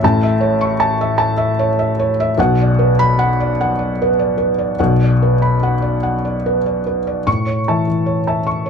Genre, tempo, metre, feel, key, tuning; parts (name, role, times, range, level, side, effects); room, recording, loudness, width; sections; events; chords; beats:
neoclassical minimalist piano; 50 BPM (dotted quarters); 6/8; uneven beats, rubato; A major; A4 = 440 Hz
felt-muted upright piano; solo; 0.0-8.7 s; A1 to C#6; -14 LUFS; equal
light reverb; -14 LUFS; side -6 dB against mid
0.0-7.3 A section; 7.3-8.7 B section
0.0 A; 2.4 Bm; 7.3 A
| 0.02 1.19 | 2.37 3.56 | 4.78 6.01 | 7.27 8.48